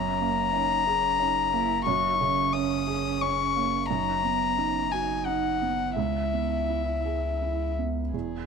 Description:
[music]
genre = neoclassical piano and strings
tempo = 81-92 BPM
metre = 3/4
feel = rubato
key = C# dorian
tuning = A4 = 440 Hz
[part]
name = rich violin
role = melody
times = 0.0-8.5 s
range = G#4 to D#6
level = -26 LUFS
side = left 8 dB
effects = none
[part]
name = warm cello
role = second line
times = 0.0-8.5 s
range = B2 to F#4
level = -35 LUFS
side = right 12 dB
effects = none
[part]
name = felt-muted upright piano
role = accompaniment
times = 0.0-8.5 s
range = C#2 to G#4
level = -30 LUFS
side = right 11 dB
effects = none
[part]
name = punchy sub bass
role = bass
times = 0.0-8.5 s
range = E1 to C#2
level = -35 LUFS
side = left 1 dB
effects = none
[sound]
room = light reverb, small room ambience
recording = 1960s-style stereo with parts hard left and right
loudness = -24 LUFS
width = side -5 dB against mid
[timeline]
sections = 0.0-8.1 A section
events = none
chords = 0.0 F#add9; 3.9 Bmaj7/F#; 6.0 C#m7

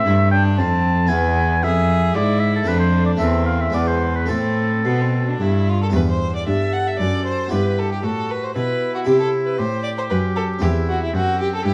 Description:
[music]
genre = classical, baroque-style sonata movement with continuo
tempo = 115 BPM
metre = 3/4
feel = rubato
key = A minor, E minor from 5.9 s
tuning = A4 = 442 Hz
[part]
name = rich violin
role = melody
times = 0.0-11.7 s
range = B3 to F#5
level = -27 LUFS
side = equal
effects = none
[part]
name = warm oboe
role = second line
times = 0.0-11.7 s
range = C4 to A5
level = -26 LUFS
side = equal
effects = none
[part]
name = harpsichord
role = accompaniment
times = 0.0-11.7 s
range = E2 to A4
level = -26 LUFS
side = equal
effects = none
[part]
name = rich cello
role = bass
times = 0.0-11.7 s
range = E2 to C3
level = -23 LUFS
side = equal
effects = none
[sound]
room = moderate recital hall reverb, RT60 1.2 s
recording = vinyl crackle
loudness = -19 LUFS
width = mono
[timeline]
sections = 0.0-5.9 A section; 5.9-11.7 A section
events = none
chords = 0.0 Am; 1.1 E; 2.7 F; 3.2 Am/E; 3.7 E; 4.3 Am; 5.9 Em; 7.5 Em/G; 9.1 C; 10.6 C/E

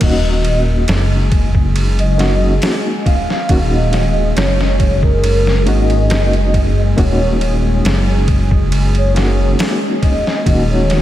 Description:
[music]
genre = trip hop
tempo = 69 BPM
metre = 4/4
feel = straight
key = Eb minor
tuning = A4 = 440 Hz
[part]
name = pure breathy sine lead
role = melody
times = 0.0-11.0 s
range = Bb4 to F5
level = -21 LUFS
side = equal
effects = ensemble chorus, tape echo
[part]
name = reed electric piano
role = accompaniment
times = 0.0-11.0 s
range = Bb3 to Gb4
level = -21 LUFS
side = equal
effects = fast tremolo, vintage 12-bit sampler grit, tape echo
[part]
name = warbly tape-like pad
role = sustained chords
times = 0.0-11.0 s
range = Ab3 to Ab4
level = -23 LUFS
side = right 1 dB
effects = chorus, built-in reverb
[part]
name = dark detuned saw bass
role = bass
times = 0.0-11.0 s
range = Eb1 to Ab1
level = -14 LUFS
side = equal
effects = none
[part]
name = trip hop sampler-style drum kit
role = drums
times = 0.0-11.0 s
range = crash cymbal, hi-hat, kick drum, ride cymbal, snare drum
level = -18 LUFS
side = equal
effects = none
[sound]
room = light reverb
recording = none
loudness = -12 LUFS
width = side -13 dB against mid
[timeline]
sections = 0.0-11.0 A section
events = none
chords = 0.0 Ebm7

